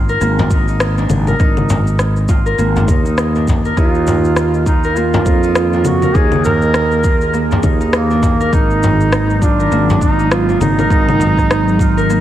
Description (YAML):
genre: organic downtempo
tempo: 101 BPM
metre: 4/4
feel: swing 58% on 16ths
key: unclear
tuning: A4 = 440 Hz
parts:
  - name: Celtic harp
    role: arpeggios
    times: 0.0-12.2 s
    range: Bb3 to Bb4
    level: -20 LUFS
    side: equal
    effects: analog delay
  - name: sustaining fretless electric bass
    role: bass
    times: 0.0-12.2 s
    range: Ab1 to F2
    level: -16 LUFS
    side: equal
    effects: sidechain pumping
  - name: electronic shaker, rim click and congas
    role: drums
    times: 0.1-12.2 s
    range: none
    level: -21 LUFS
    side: left 2 dB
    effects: studio reverb, analog delay
  - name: frame drum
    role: percussion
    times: 0.4-11.3 s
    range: none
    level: -22 LUFS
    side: left 1 dB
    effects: analog delay
  - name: electronic kick drum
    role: drums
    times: 0.5-11.9 s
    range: none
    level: -15 LUFS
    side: equal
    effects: studio reverb
  - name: warm duduk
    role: melody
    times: 3.8-12.2 s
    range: Bb3 to Bb4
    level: -17 LUFS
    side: right 3 dB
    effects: analog delay
  - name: ethereal airy pad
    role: sustained chords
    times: 5.7-12.2 s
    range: Eb3 to Ab4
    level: -23 LUFS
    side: equal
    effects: ensemble chorus, built-in reverb, sidechain pumping
room: light reverb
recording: echo-heavy mix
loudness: -11 LUFS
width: side -12 dB against mid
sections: 0.0-12.2 A section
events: none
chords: 0.0 Ab5; 3.8 Eb5; 8.5 Ab5